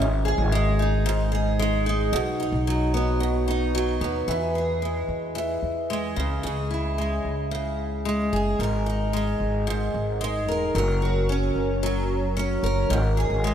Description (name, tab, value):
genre	acoustic pop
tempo	111 BPM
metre	4/4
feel	straight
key	unclear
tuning	A4 = 441 Hz
part	picked steel-string acoustic guitar	accompaniment	0.0-13.5 s	G#2 to B4	-24 LUFS	equal	double-tracked left and right
part	upright bass	bass	0.0-13.5 s	E1 to E2	-26 LUFS	equal	none
room	wet lush hall reverb, RT60 3.0 s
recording	dreamy mix soaked in reverb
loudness	-22 LUFS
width	side -9 dB against mid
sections	0.0-4.3 A section; 4.3-12.9 B section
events	none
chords	0.0 G#5; 2.1 B; 4.3 E; 6.2 C#m; 8.6 G#sus2; 10.7 F#; 12.9 G#5